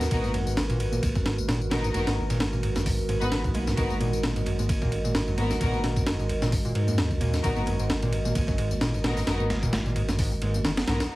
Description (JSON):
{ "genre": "breakbeat, breaks", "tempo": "131 BPM", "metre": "4/4", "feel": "swing 56% on 16ths", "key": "G# minor", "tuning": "A4 = 440 Hz", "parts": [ { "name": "dark analog pad", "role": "sustained chords", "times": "0.0-11.2 s", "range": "G#3 to D#5", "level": "-32 LUFS", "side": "right 1 dB", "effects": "chorus, vintage 12-bit sampler grit, sidechain pumping" }, { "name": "overdriven acid bass", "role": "riff", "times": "0.0-11.1 s", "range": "G#1 to B3", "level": "-29 LUFS", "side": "equal", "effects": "analog chorus" }, { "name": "rich symphonic string section", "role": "stabs", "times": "0.0-11.2 s", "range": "B3 to B4", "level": "-33 LUFS", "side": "left 1 dB", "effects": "tape echo" }, { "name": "saturated sub bass", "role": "bass", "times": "0.0-11.1 s", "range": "F#1 to G#2", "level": "-30 LUFS", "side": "equal", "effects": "none" }, { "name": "breakbeat sampler-style drum kit", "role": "drums", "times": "0.0-11.1 s", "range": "hi-hat, kick drum, ride cymbal, snare drum", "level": "-29 LUFS", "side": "equal", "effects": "studio reverb" }, { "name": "tambourine", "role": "drums", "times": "0.0-11.1 s", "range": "none", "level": "-42 LUFS", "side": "left 6 dB", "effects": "low-pass filter on perc, studio reverb" }, { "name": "congas", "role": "percussion", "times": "0.2-11.0 s", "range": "none", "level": "-38 LUFS", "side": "right 2 dB", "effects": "none" } ], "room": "light reverb", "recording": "heavily compressed radio sound, multiband compression, vinyl crackle", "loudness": "-23 LUFS", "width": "side -18 dB against mid", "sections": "0.0-11.1 A section", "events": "filter sweep on acid bass 0.0-11.1", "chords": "0.0 G#m9" }